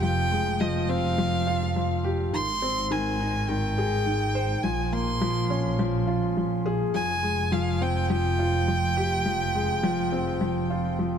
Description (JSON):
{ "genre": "piano and strings electronica", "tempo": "104 BPM", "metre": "4/4", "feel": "straight", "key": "F minor", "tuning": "A4 = 440 Hz", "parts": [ { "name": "warm violin", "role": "melody", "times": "0.0-10.9 s", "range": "Eb5 to C6", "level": "-29 LUFS", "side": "right 2 dB", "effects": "ping-pong delay" }, { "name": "felt-muted upright piano", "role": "riff", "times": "0.0-11.2 s", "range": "Eb3 to C5", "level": "-27 LUFS", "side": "left 1 dB", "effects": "ping-pong delay" }, { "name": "dark symphonic double bass section", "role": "bass", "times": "0.0-11.2 s", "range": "F1 to Bb1", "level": "-28 LUFS", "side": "equal", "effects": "none" } ], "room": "light reverb, small room ambience", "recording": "none", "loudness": "-23 LUFS", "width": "side -8 dB against mid", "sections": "0.0-11.2 A section", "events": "none", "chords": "0.0 Fmadd9; 2.3 Ab; 4.6 Bbm7; 6.9 Fmadd9" }